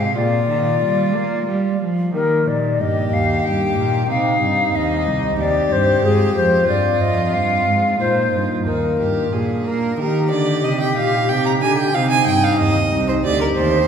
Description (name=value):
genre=classical, baroque-style sonata movement with continuo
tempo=92 BPM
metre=3/4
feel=straight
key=Eb major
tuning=A4 = 440 Hz
part: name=hollow concert flute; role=melody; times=0.0-13.9 s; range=Eb4 to G5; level=-20 LUFS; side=left 4 dB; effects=none
part: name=clear violin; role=second line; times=0.0-13.9 s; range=Eb4 to Bb5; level=-22 LUFS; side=right 4 dB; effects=none
part: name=pipe organ, flutes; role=accompaniment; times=0.0-13.9 s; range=C2 to Ab4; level=-23 LUFS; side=right 1 dB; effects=none
part: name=rich cello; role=bass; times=0.0-13.9 s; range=C2 to Bb3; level=-21 LUFS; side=right 1 dB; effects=none
room=wet concert hall reverb, RT60 2.2 s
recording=heard from further back in the room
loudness=-16 LUFS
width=side -7 dB against mid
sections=0.0-10.0 A section; 10.0-13.9 A section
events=none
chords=0.2 Bb; 2.1 Eb; 4.1 Cm; 6.0 Fm; 8.0 Bbsus4; 9.3 Bb; 10.0 Eb; 11.9 Cm